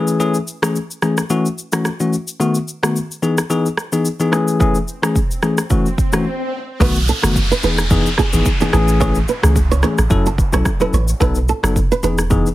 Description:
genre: afrobeats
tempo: 109 BPM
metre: 4/4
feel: swing 55% on 16ths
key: unclear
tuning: A4 = 440 Hz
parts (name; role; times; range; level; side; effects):
- bell-like tine electric piano; accompaniment; 0.0-12.5 s; D#3 to A4; -18 LUFS; left 2 dB; none
- afro-pop drum kit; drums; 0.1-12.5 s; kick drum, rim click, shaker, toms; -19 LUFS; right 1 dB; none
- swell and downlifter; sound effects; 5.3-11.2 s; none; -26 LUFS; equal; none
- flamenco guitar; riff; 6.8-12.1 s; G#4 to C#5; -20 LUFS; right 6 dB; ping-pong delay
- punchy sub bass; bass; 6.8-12.4 s; E1 to C#2; -17 LUFS; right 1 dB; none
room: light reverb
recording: heavily compressed radio sound, multiband compression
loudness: -14 LUFS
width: side -15 dB against mid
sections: 0.0-6.8 A section; 6.8-12.5 B section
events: swell 5.3-6.8; break 6.3-6.8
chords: 0.0 Amaj7; 1.3 F#m7; 2.4 B7; 3.2 Emaj7; 4.3 Amaj7; 5.7 F#m7; 6.8 B7; 7.6 Emaj7; 8.7 Amaj7; 10.1 F#m7; 11.2 B7; 12.0 Emaj7

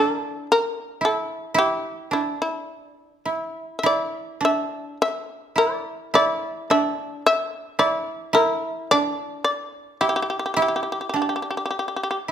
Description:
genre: japanese traditional, Japanese chamber music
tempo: 53 BPM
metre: 2/4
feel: rubato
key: unclear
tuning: A4 = 436 Hz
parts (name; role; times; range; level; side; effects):
- shamisen; melody; 0.0-12.2 s; E4 to E5; -22 LUFS; left 2 dB; none
- koto; second line; 0.0-12.3 s; D4 to E4; -24 LUFS; right 3 dB; none
room: moderate recital hall reverb, RT60 1.3 s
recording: minimal, uncompressed stereo recording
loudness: -21 LUFS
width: side -9 dB against mid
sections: 0.0-12.3 A section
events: none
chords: none

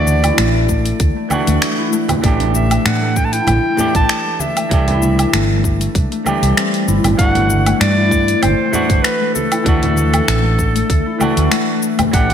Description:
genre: organic downtempo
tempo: 97 BPM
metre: 4/4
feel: swing 53% on 16ths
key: unclear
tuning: A4 = 445 Hz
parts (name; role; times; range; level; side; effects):
- bright clarinet; melody; 0.0-12.3 s; A4 to A5; -20 LUFS; equal; tape echo, slapback echo
- semi-hollow electric guitar; accompaniment; 0.0-12.3 s; E3 to G4; -22 LUFS; right 4 dB; vintage 12-bit sampler grit, sidechain pumping, tape echo, slapback echo
- concert harp; arpeggios; 0.0-12.3 s; G3 to E4; -19 LUFS; left 4 dB; tape echo, slapback echo
- fretless electric bass; bass; 0.0-12.3 s; G1 to A2; -16 LUFS; equal; tube saturation, sidechain pumping
- afro-pop drum kit; drums; 0.1-12.3 s; cabasa, finger snaps, hi-hat, woodblock; -21 LUFS; equal; none
- congas and bongos; percussion; 0.1-12.3 s; none; -25 LUFS; right 3 dB; none
- electronic kick drum; drums; 0.7-12.3 s; none; -16 LUFS; equal; none
room: moderate lush hall reverb, RT60 1.6 s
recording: big arena sound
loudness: -13 LUFS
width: side -8 dB against mid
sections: 0.0-12.3 A section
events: none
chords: 0.0 D; 2.2 A5; 4.7 C; 7.2 G5; 9.7 D

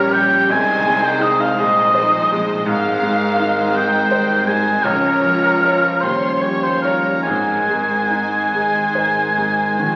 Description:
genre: classical, romantic movement for piano and orchestra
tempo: 46-56 BPM (dotted quarters)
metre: 12/8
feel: rubato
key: Ab major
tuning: A4 = 440 Hz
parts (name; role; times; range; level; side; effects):
- bright baby grand piano; melody; 0.0-10.0 s; Bb1 to Db5; -25 LUFS; equal; none
- rich studio violin section; melody; 0.0-10.0 s; C5 to Db5; -32 LUFS; equal; none
- mellow cor anglais; second line; 0.0-10.0 s; Bb4 to Ab5; -19 LUFS; equal; none
- warm symphonic violin section; second line; 0.0-10.0 s; Eb5 to Db6; -30 LUFS; equal; none
- warm studio viola section; accompaniment; 0.0-10.0 s; F3 to G4; -28 LUFS; equal; none
- dark French horn section; sustained chords; 0.0-10.0 s; Eb3 to Db4; -27 LUFS; equal; none
- dark studio cello section; bass; 0.0-10.0 s; Db2 to C3; -33 LUFS; equal; none
- rich studio double bass section; bass; 0.0-10.0 s; Ab1 to Eb2; -36 LUFS; equal; none
room: wet recital hall reverb, RT60 1.5 s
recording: very old 78 rpm record, vinyl crackle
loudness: -17 LUFS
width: mono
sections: 0.0-10.0 A section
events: none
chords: 0.0 Gdim/Bb; 0.5 Ab/C; 2.7 Ab; 4.8 Bbm/Db; 6.0 Eb9; 7.2 Ab

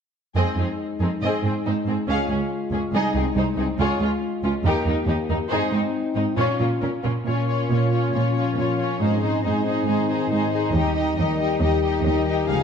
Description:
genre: cinematic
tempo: 139 BPM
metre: 4/4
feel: straight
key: unclear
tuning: A4 = 443 Hz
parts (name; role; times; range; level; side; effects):
- rich symphonic violin section; melody; 0.4-12.6 s; Eb4 to F5; -31 LUFS; left 3 dB; none
- warm symphonic violin section; second line; 0.4-12.6 s; Bb3 to Ab4; -30 LUFS; left 1 dB; none
- rich symphonic viola section; accompaniment; 0.4-12.6 s; C4 to F4; -29 LUFS; right 1 dB; none
- mellow French horn section; sustained chords; 0.4-12.6 s; F3 to G4; -27 LUFS; left 4 dB; none
- rich symphonic cello section; bass; 0.4-12.6 s; C2 to Bb2; -24 LUFS; right 3 dB; none
- concert harp; arpeggios; 7.3-12.6 s; Ab2 to Bb4; -27 LUFS; left 9 dB; none
room: moderate scoring stage reverb, RT60 1.5 s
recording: dark, warm production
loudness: -20 LUFS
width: side -7 dB against mid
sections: 0.4-7.3 A section; 7.3-12.6 B section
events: build-up 7.3-12.6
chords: 0.4 Fm7; 1.2 Ab; 2.1 Db; 3.0 Ab/C; 3.8 Db; 4.7 Eb; 5.5 Ab; 6.4 Bbm; 9.0 Ab; 10.7 Eb

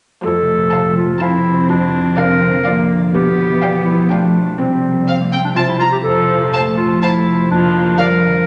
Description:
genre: cinematic, playful, whimsical film cue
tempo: 124 BPM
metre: 3/4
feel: straight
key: F major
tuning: A4 = 440 Hz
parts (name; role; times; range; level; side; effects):
- bright clarinet; second line; 0.2-8.5 s; Bb3 to Bb4; -19 LUFS; equal; none
- warm studio viola section; accompaniment; 0.2-7.9 s; F3 to C4; -24 LUFS; equal; none
- concert harp; arpeggios; 0.2-8.5 s; F2 to D5; -19 LUFS; equal; none
- warm studio cello section; bass; 0.2-8.5 s; G3 to C4; -24 LUFS; equal; none
- rich studio violin section; melody; 0.7-8.1 s; F5 to Bb5; -25 LUFS; equal; none
- dark studio violin section; second line; 0.7-8.1 s; C5 to F5; -29 LUFS; equal; none
room: wet scoring stage reverb, RT60 2.0 s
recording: nothing above 10.6 kHz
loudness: -15 LUFS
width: mono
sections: 0.2-8.5 A section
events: none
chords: 0.2 F; 1.7 Bb/F; 3.1 G7/B; 4.6 Csus4; 5.6 C; 6.1 F; 7.5 Bb/F

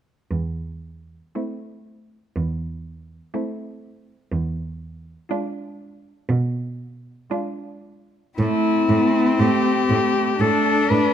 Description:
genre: classical, lyrical piece for cello ensemble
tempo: 60 BPM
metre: 4/4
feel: rubato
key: A minor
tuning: A4 = 435 Hz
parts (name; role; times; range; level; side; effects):
- warm cello; bass; 0.3-11.0 s; E2 to B2; -24 LUFS; right 2 dB; none
- rich cello; melody; 1.4-11.1 s; E4 to B4; -21 LUFS; left 5 dB; none
- clear cello; second line; 1.4-11.1 s; A3 to D4; -26 LUFS; right 10 dB; none
- warm cello; accompaniment; 1.4-11.1 s; G#3 to D4; -24 LUFS; left 2 dB; none
room: light reverb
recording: close, detailed microphones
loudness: -20 LUFS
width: side -9 dB against mid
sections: 0.3-8.4 A section; 8.4-11.1 B section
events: none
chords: 0.3 Am/E; 4.3 E7b9; 8.4 Am

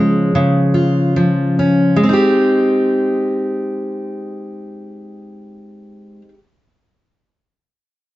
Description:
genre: pop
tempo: 70 BPM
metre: 4/4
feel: swing 55% on 16ths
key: Ab major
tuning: A4 = 440 Hz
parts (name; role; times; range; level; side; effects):
- fingerpicked steel-string acoustic guitar; solo; 0.0-6.4 s; Db3 to G4; -14 LUFS; equal; none
room: moderate studio reverb, RT60 0.6 s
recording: nothing above 7.7 kHz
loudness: -13 LUFS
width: side -16 dB against mid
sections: 0.0-2.0 A section; 2.0-5.5 B section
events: slowing down 0.0-2.0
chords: 0.0 Db; 2.0 Abmaj7

